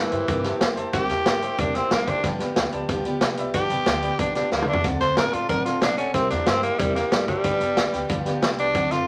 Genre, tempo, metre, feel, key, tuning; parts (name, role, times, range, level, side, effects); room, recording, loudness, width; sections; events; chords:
rockabilly; 184 BPM; 4/4; straight; G mixolydian; A4 = 442 Hz
raspy tenor saxophone; melody; 0.0-9.1 s; E3 to C5; -26 LUFS; equal
picked steel-string acoustic guitar; accompaniment; 0.0-9.1 s; G2 to A4; -32 LUFS; equal
warm upright piano; accompaniment; 0.0-9.0 s; A4 to Bb5; -35 LUFS; equal
upright bass; bass; 0.0-9.0 s; G1 to A2; -36 LUFS; equal
vintage drum kit; drums; 0.1-9.0 s; hi-hat, kick drum, snare drum, toms; -27 LUFS; equal
moderate studio reverb, RT60 0.6 s; vinyl crackle; -23 LUFS; mono
0.0-9.1 A section
drum fill 4.5-4.8
0.0 C7; 2.2 G7; 4.8 D7; 6.1 C7; 7.4 G7